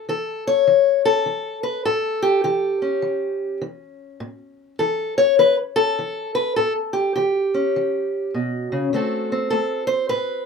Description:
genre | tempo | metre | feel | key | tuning
acoustic country blues, solo or duo | 102 BPM | 4/4 | swing 63% on 8ths | A mixolydian | A4 = 440 Hz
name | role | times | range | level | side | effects
fingerpicked steel-string acoustic guitar | solo | 0.0-10.5 s | A2 to C#5 | -18 LUFS | left 2 dB | none
room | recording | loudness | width
moderate booth ambience, RT60 0.2 s | minimal, uncompressed stereo recording | -18 LUFS | side -5 dB against mid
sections
0.0-10.5 A section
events
none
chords
0.0 A7; 8.9 D7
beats
0.08 0.67 1.26 | 1.85 2.44 3.03 3.62 | 4.21 4.80 5.39 5.98 | 6.57 7.16 7.75 8.34 | 8.92 9.51 10.10

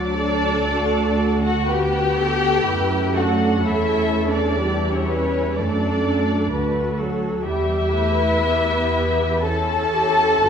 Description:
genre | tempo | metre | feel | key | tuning
classical, slow romantic movement for string orchestra | 55-66 BPM | 4/4 | rubato | D major | A4 = 435 Hz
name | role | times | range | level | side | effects
muted studio violin section | melody | 0.0-10.5 s | C#5 to A5 | -24 LUFS | left 3 dB | none
muted studio violin section | second line | 0.0-10.5 s | C#4 to A4 | -24 LUFS | left 2 dB | none
muted studio viola section | accompaniment | 0.0-10.5 s | F#3 to G4 | -24 LUFS | right 2 dB | none
muted studio cello section | bass | 0.0-10.5 s | F#4 to B4 | -25 LUFS | right 1 dB | none
muted studio double bass section | bass | 0.0-10.5 s | G1 to F#2 | -24 LUFS | right 2 dB | none
room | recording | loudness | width
wet recital hall reverb, RT60 1.6 s | recorded in a church or concert hall | -18 LUFS | side -7 dB against mid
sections
0.0-10.5 A section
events
none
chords
0.0 D; 3.6 C#dim/E; 5.6 D/F#; 7.4 Em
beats
0.68 1.67 2.65 | 3.62 4.60 5.57 6.52 | 7.45 8.39 9.45 10.44

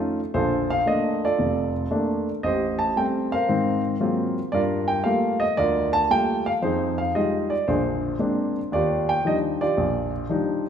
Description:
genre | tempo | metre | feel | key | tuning
solo jazz | 114 BPM | 4/4 | swing 68% on 8ths | Bb major | A4 = 440 Hz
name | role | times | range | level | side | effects
warm grand piano | solo | 0.0-10.7 s | F1 to A5 | -21 LUFS | equal | none
room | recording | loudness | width
wet recital hall reverb, RT60 1.8 s | recorded in a church or concert hall | -21 LUFS | side -8 dB against mid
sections
0.3-10.7 A section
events
none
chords
0.3 Bbmaj7; 2.4 Am7b5; 3.5 Ab13; 4.5 Gm9; 6.6 Fm9; 7.7 Bb9; 8.7 Ebmaj9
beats
| 0.34 0.86 1.38 1.91 | 2.43 2.96 3.48 4.00 | 4.53 5.05 5.58 6.11 | 6.63 7.16 7.68 8.21 | 8.73 9.26 9.78 10.30

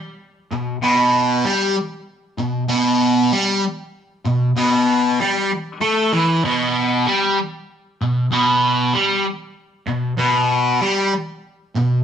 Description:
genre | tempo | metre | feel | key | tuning
rock | 64 BPM (dotted quarters) | 6/8 | straight | unclear | A4 = 440 Hz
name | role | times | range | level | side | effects
fuzz guitar | solo | 0.5-12.0 s | B2 to A3 | -16 LUFS | equal | distortion, phaser
room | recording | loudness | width
light reverb | band playing live in one room | -16 LUFS | side -8 dB against mid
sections
0.0-12.0 A section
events
none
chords
none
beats
| 0.82 1.76 | 2.70 3.63 | 4.57 5.51 | 6.44 7.38 | 8.32 9.26 | 10.19 11.13

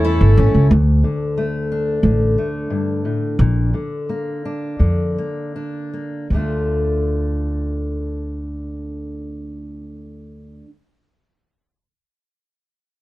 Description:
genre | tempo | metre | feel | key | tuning
acoustic folk duo or small band | 77-92 BPM | 4/4 | straight | D minor | A4 = 439 Hz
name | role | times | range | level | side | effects
dark clarinet | second line | 0.0-0.7 s | A4 | -29 LUFS | right 5 dB | none
fingerpicked steel-string acoustic guitar | accompaniment | 0.0-10.7 s | D2 to F4 | -23 LUFS | left 2 dB | none
pedal harmonium | sustained chords | 0.0-0.7 s | E4 to A5 | -29 LUFS | equal | none
picked steel-string acoustic guitar | arpeggios | 0.0-0.8 s | C#4 to A4 | -24 LUFS | right 7 dB | none
upright bass | bass | 0.0-10.6 s | G1 to F2 | -17 LUFS | equal | none
room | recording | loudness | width
little or no reverb | dark, warm production | -17 LUFS | side -17 dB against mid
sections
0.7-6.3 A section; 6.3-9.4 B section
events
slowing down 0.7-6.3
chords
0.0 A; 0.7 D5; 3.4 Bb; 6.3 Dm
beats
0.05 | 0.70 1.36 2.02 2.69 | 3.38 4.08 4.80 5.54 | 6.30 7.08 7.85 8.63

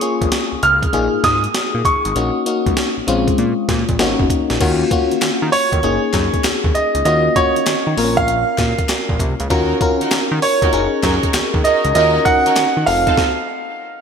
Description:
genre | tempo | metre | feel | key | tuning
R&B, new jack swing | 98 BPM | 4/4 | swing 66% on 16ths | unclear | A4 = 439 Hz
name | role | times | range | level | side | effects
clear grand piano | melody | 0.0-14.0 s | Db5 to F6 | -17 LUFS | right 2 dB | lush chorus, ping-pong delay
FM electric piano | accompaniment | 0.0-13.2 s | Ab3 to Bb4 | -19 LUFS | left 4 dB | chorus
breakbeat sampler-style drum kit | drums | 0.0-13.4 s | crash cymbal, hi-hat, kick drum, snare drum | -20 LUFS | right 1 dB | none
fat analog bass | bass | 0.2-13.1 s | F1 to Eb3 | -22 LUFS | right 1 dB | none
group handclap | percussion | 5.2-12.8 s | none | -29 LUFS | left 6 dB | none
rich studio string section | stabs | 9.5-13.2 s | C4 to Bb4 | -23 LUFS | right 2 dB | none
room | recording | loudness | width
wet lush hall reverb, RT60 1.8 s, digital ambience | bright 1980s-style digital production | -14 LUFS | side -6 dB against mid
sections
0.0-4.6 A section; 4.6-14.0 B section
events
stop 13.2-14.0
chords
0.0 Bbm7; 0.9 Db69; 2.2 Gb6/Bb; 3.1 Bbm7; 4.0 Ab9sus4; 4.6 Ebm7; 5.8 Gb6; 7.1 Ebm7; 8.0 Bbm; 9.5 Ebm7; 10.7 Gb6; 12.0 Ebm7; 12.9 F7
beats
0.32 0.93 1.54 | 2.16 2.77 3.38 3.99 | 4.61 5.22 5.83 6.44 | 7.05 7.67 8.28 8.89 | 9.50 10.12 10.73 11.34 | 11.95 12.56 13.18 13.79

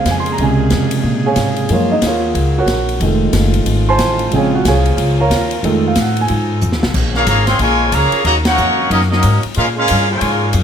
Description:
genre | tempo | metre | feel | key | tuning
jazz, big band swing | 183 BPM | 4/4 | swing 62% on 8ths | Bb minor | A4 = 441 Hz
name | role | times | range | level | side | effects
warm concert grand piano | accompaniment | 0.0-6.6 s | C3 to C6 | -15 LUFS | right 3 dB | none
dark saxophone section | sustained chords | 0.0-10.6 s | Bb2 to A4 | -25 LUFS | left 2 dB | none
upright bass | bass | 0.0-10.6 s | F1 to Bb2 | -16 LUFS | left 1 dB | none
swinging big-band drum kit | drums | 0.1-10.6 s | crash cymbal, hi-hat, kick drum, ride cymbal, snare drum | -21 LUFS | left 1 dB | none
clear trombone section | second line | 7.1-10.5 s | Db3 to Gb4 | -22 LUFS | right 2 dB | none
bright trumpet section | melody | 7.2-10.5 s | Db4 to C6 | -15 LUFS | left 1 dB | none
room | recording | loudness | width
light reverb | close, detailed microphones | -12 LUFS | side -8 dB against mid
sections
0.0-6.9 A section; 6.9-10.6 B section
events
grand piano solo 0.0-6.9; drum fill 6.6-6.9; band accent 8.4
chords
0.0 Bbm7; 1.7 Gbmaj7; 3.0 F7#9; 4.3 Bbm7; 5.6 F7#9; 6.9 Bbm7; 8.3 Ebm7; 9.6 Bbm7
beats
0.06 | 0.39 0.71 1.04 1.37 | 1.70 2.03 2.35 2.68 | 3.01 3.34 3.67 3.99 | 4.32 4.65 4.98 5.30 | 5.63 5.96 6.29 6.62 | 6.94 7.27 7.60 7.92 | 8.25 8.58 8.91 9.23 | 9.56 9.89 10.21 10.54

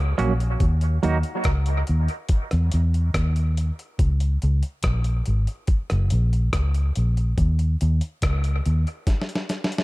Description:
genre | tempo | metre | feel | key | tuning
dub reggae | 71 BPM | 4/4 | straight | C# dorian | A4 = 444 Hz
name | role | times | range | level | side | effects
vintage muted fingered electric bass | bass | 0.0-8.8 s | F#1 to E2 | -20 LUFS | equal | none
semi-hollow electric guitar | accompaniment | 0.2-1.2 s | F#3 to F#4 | -27 LUFS | right 4 dB | harmonic tremolo, dub echo
dusty soul sampler-style drum kit | drums | 0.2-9.8 s | hi-hat, kick drum, rim click, snare drum | -25 LUFS | equal | none
room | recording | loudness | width
digital ambience | echo-heavy mix | -20 LUFS | side -20 dB against mid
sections
0.0-9.8 A section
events
drum fill 9.1-9.8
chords
0.0 F#; 0.6 D#m; 2.3 N.C.; 4.0 C#5; 5.7 F# (rootless); 7.4 C#sus2; 9.1 N.C.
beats
| 0.60 1.45 2.29 3.14 | 3.99 4.84 5.69 6.53 | 7.38 8.23 9.07

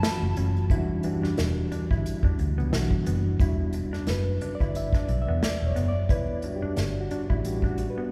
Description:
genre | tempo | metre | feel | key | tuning
R&B, neo-soul | 89 BPM | 4/4 | swing 56% on 16ths | E dorian | A4 = 438 Hz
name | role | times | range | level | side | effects
reed electric piano | accompaniment | 0.0-8.1 s | E3 to E5 | -32 LUFS | equal | overdrive, fast tremolo
unplugged drum kit | drums | 0.0-8.0 s | hi-hat, kick drum, snare drum | -30 LUFS | equal | none
vintage muted fingered electric bass | bass | 0.2-7.9 s | E1 to E2 | -30 LUFS | equal | none
electric guitar through a small old amp | second line | 0.4-8.1 s | B3 to E4 | -39 LUFS | equal | none
room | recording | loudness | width
wet church reverb, RT60 3.6 s | recorded in a church or concert hall | -26 LUFS | mono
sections
0.0-3.4 A section; 3.4-8.1 B section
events
reed electric piano solo 3.4-8.1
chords
0.0 F#m9; 0.7 Em9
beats
0.02 | 0.70 1.37 2.05 2.72 | 3.40 4.07 4.74 5.42 | 6.09 6.77 7.44 8.11

